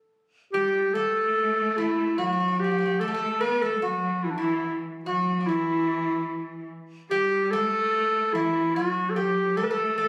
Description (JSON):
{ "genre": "Turkish makam ensemble", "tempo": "73 BPM", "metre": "4/4", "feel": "straight", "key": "A makam huseyni", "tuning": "A4 = 440 Hz", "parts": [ { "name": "warm clarinet", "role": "melody", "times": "0.5-10.1 s", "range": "D4 to B4-31c", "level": "-26 LUFS", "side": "equal", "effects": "none" }, { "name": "Greek bouzouki", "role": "second line", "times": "0.5-10.1 s", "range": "D4 to B4-30c", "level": "-39 LUFS", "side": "equal", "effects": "none" }, { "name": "rich cello", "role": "second line", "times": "0.5-10.1 s", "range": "E3 to B3-26c", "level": "-33 LUFS", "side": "equal", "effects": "none" } ], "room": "light reverb", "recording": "recorded on a phone in the room, club reverb, compression", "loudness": "-25 LUFS", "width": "mono", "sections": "0.5-10.1 A section", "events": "none", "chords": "none" }